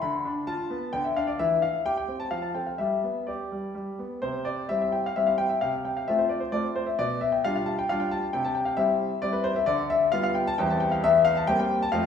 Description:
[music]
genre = classical-period piano sonatina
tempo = 132 BPM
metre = 3/4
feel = straight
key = C major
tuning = A4 = 440 Hz
[part]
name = clear grand piano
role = solo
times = 0.0-12.1 s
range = E2 to B5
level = -24 LUFS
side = left 2 dB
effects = none
[sound]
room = wet recital hall reverb, RT60 1.4 s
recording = heard from further back in the room, small room reverb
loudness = -24 LUFS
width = side -7 dB against mid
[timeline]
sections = 0.0-4.2 A section; 4.2-12.1 B section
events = none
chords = 0.0 Dm6; 1.4 C/E; 2.3 F; 2.8 G; 4.2 C; 5.6 F/C; 7.0 G7/B; 8.3 C; 9.7 G7/D; 10.6 C/E; 11.0 C7/E

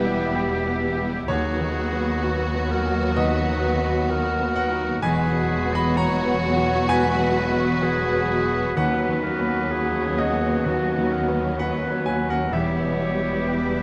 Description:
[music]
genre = cinematic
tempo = 64 BPM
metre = 4/4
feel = rubato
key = B major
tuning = A4 = 440 Hz
[part]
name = warm studio violin section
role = melody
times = 0.0-13.8 s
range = C#4 to F#4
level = -34 LUFS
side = equal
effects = none
[part]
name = clear clarinet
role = second line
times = 0.0-13.8 s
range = F#4 to C#5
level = -32 LUFS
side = equal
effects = none
[part]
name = clear oboe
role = second line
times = 0.0-13.8 s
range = F#4 to D#5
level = -33 LUFS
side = equal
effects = none
[part]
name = warm studio violin section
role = second line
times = 0.0-13.8 s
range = G3 to B3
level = -36 LUFS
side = equal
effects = none
[part]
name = clear baby grand piano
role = accompaniment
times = 0.0-13.8 s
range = D#2 to B5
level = -29 LUFS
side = equal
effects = none
[part]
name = dark studio viola section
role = accompaniment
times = 0.0-13.8 s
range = F#3 to G3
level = -34 LUFS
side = equal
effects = none
[part]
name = mellow French horn section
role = sustained chords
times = 0.0-13.8 s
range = G3 to G4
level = -33 LUFS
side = equal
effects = none
[part]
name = concert harp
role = arpeggios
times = 0.0-13.8 s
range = D#3 to C#6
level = -34 LUFS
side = equal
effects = none
[part]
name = warm studio cello section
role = bass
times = 0.0-13.8 s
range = D#2 to E2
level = -31 LUFS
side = equal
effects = none
[part]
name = warm studio double bass section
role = bass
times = 0.0-13.8 s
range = E1 to D#2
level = -32 LUFS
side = equal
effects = none
[sound]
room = moderate scoring stage reverb, RT60 1.6 s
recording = none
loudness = -23 LUFS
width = mono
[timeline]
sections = 0.0-13.8 A section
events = none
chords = 0.0 Em; 1.3 Badd9/D#; 5.0 Eadd9; 8.8 Badd9/D#; 12.5 Em

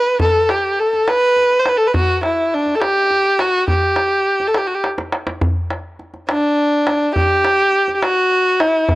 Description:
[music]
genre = Persian modal ensemble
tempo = 69 BPM (dotted quarters)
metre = 6/8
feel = straight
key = G dastgah mahur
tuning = A4 = 440 Hz
[part]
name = rich kamancheh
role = melody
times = 0.0-8.9 s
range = D4 to C5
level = -14 LUFS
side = equal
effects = none
[part]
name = tombak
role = percussion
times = 0.2-9.0 s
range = none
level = -20 LUFS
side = equal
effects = none
[sound]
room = light reverb, studio ambience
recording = dry, gritty hardware recording, transformer saturation, cassette tape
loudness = -14 LUFS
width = side -18 dB against mid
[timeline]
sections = 0.0-5.4 A section; 5.4-9.0 B section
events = drum fill 4.8-5.4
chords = none

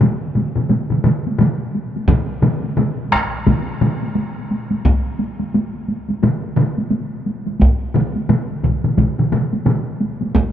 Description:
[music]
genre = japanese traditional, taiko drum ensemble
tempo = 87 BPM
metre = 4/4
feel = swing 60% on 16ths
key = none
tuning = none
[part]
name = solo taiko drums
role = percussion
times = 0.0-9.9 s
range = none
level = -21 LUFS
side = left 4 dB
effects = none
[part]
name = taiko ensemble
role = percussion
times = 0.0-10.5 s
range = none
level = -21 LUFS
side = equal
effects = none
[part]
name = taiko ensemble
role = percussion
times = 0.0-9.9 s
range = none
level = -22 LUFS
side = right 3 dB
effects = none
[part]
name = taiko ensemble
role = percussion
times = 2.1-10.5 s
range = none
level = -18 LUFS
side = equal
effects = none
[sound]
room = moderate huge ambient reverb, RT60 7.6 s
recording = dark, warm production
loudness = -16 LUFS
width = side -10 dB against mid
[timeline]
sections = 0.0-10.5 A section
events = none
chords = none

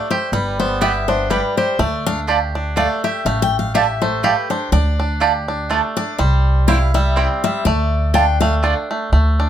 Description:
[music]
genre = bluegrass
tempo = 123 BPM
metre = 3/4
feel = swing 55% on 8ths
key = D dorian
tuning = A4 = 442 Hz
[part]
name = picked steel-string acoustic guitar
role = accompaniment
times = 0.0-8.5 s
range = B4 to G5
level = -21 LUFS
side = left 6 dB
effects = none
[part]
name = bluegrass banjo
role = arpeggios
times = 0.0-9.5 s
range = G3 to G4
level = -21 LUFS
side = right 2 dB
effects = none
[part]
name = upright bass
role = bass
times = 0.3-9.5 s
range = G1 to D2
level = -18 LUFS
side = equal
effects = none
[part]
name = mandolin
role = stabs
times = 0.8-8.7 s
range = A3 to A5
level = -18 LUFS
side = right 7 dB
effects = none
[sound]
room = light reverb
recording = close, detailed microphones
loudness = -15 LUFS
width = side -10 dB against mid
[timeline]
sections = 0.0-9.1 A section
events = steel-string acoustic guitar solo 0.0-9.5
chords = 0.3 G; 1.8 Dm; 6.2 C; 7.7 Dm

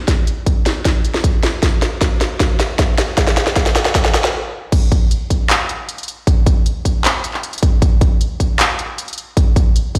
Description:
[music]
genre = future bass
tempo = 155 BPM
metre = 4/4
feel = half-time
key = none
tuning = none
[part]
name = electronic kick drum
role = drums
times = 0.1-10.0 s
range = none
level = -17 LUFS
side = equal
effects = none
[part]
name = trap drum kit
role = drums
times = 0.1-10.0 s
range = crash cymbal, handclaps, hi-hat, snare drum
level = -20 LUFS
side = equal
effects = none
[sound]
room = moderate digital room reverb, RT60 1.1 s, digital ambience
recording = played on a big sound system in a bare room, stone room reverb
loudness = -16 LUFS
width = mono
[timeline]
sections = 0.0-4.7 A section; 4.7-10.0 B section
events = build-up 0.0-4.7; drum fill 0.0-4.3; stop 4.3-4.7; drop 4.7-10.0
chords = none

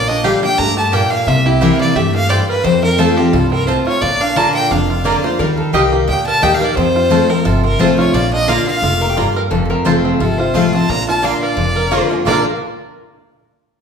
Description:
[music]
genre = bluegrass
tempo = 175 BPM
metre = 4/4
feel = swing 54% on 8ths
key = Bb major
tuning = A4 = 438 Hz
[part]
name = clear fiddle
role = melody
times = 0.0-12.4 s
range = G4 to Bb5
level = -17 LUFS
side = left 1 dB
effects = none
[part]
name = picked steel-string acoustic guitar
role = accompaniment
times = 0.0-12.4 s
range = F2 to G4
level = -16 LUFS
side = left 2 dB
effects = none
[part]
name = bluegrass banjo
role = arpeggios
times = 0.0-12.5 s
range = F3 to Bb4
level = -21 LUFS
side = right 4 dB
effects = none
[part]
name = upright bass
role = bass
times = 0.0-12.4 s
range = F1 to G2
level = -20 LUFS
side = equal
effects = none
[part]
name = mandolin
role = stabs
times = 0.2-12.4 s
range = Bb3 to Bb5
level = -22 LUFS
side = right 3 dB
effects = none
[part]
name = lap resonator guitar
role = second line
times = 5.0-6.0, 9.0-12.4 s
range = F4 to F5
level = -23 LUFS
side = left 3 dB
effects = none
[sound]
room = wet large studio reverb, RT60 1.3 s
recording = band playing live in one room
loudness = -12 LUFS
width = side -6 dB against mid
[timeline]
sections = 0.0-9.5 A section; 9.5-12.3 B section; 12.3-13.6 C section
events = none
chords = 0.0 Gm/Bb; 1.3 C7; 2.6 F; 4.0 Bb; 5.4 Eb; 6.8 F; 8.1 Bb; 9.5 F; 10.9 Bb

